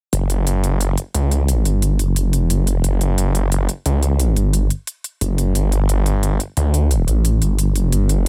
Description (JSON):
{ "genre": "dark technical drum and bass", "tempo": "177 BPM", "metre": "4/4", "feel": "straight", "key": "F# phrygian", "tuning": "A4 = 442 Hz", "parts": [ { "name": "snarling distorted saw bass", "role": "bass", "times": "0.1-8.3 s", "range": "F#1 to D2", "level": "-18 LUFS", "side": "equal", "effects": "distortion, overdrive" }, { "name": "electronic hi-hat", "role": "drums", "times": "0.1-8.2 s", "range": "none", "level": "-28 LUFS", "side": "equal", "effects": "none" } ], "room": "digital ambience", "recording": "none", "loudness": "-18 LUFS", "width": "mono", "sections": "0.1-8.3 A section", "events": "none", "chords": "none" }